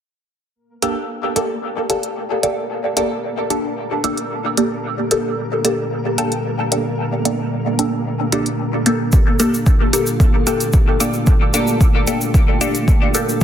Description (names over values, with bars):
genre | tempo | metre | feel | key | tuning
dub techno | 112 BPM | 4/4 | straight | G minor | A4 = 443 Hz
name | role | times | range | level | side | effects
deep dark ambient pad | sustained chords | 3.1-13.4 s | Bb3 to A4 | -24 LUFS | right 1 dB | chorus, built-in reverb, sidechain pumping
flickering grainy texture | texture | 1.1-13.4 s | Bb3 to Bb4 | -29 LUFS | equal | built-in reverb, sidechain pumping
filtered dub chord stab | stabs | 0.8-13.4 s | Bb3 to A4 | -19 LUFS | equal | phaser, sidechain pumping, dub echo
electronic hi-hat | drums | 0.8-13.3 s | none | -20 LUFS | right 1 dB | none
electronic kick drum | drums | 9.1-13.4 s | none | -14 LUFS | equal | none
tube shaker | percussion | 9.1-13.4 s | none | -26 LUFS | left 1 dB | none
room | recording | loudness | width
moderate digital room reverb, RT60 0.9 s, digital ambience | dense, heavily limited modern master | -15 LUFS | side -9 dB against mid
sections
0.6-13.4 A section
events
filter sweep on synth stab 0.6-13.4; filter sweep on ambient pad 0.6-13.4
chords
0.6 Gmadd9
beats
| 0.56 1.09 1.63 2.17 | 2.70 3.24 3.77 4.31 | 4.84 5.38 5.92 6.45 | 6.99 7.52 8.06 8.59 | 9.13 9.66 10.20 10.74 | 11.27 11.81 12.34 12.88 | 13.41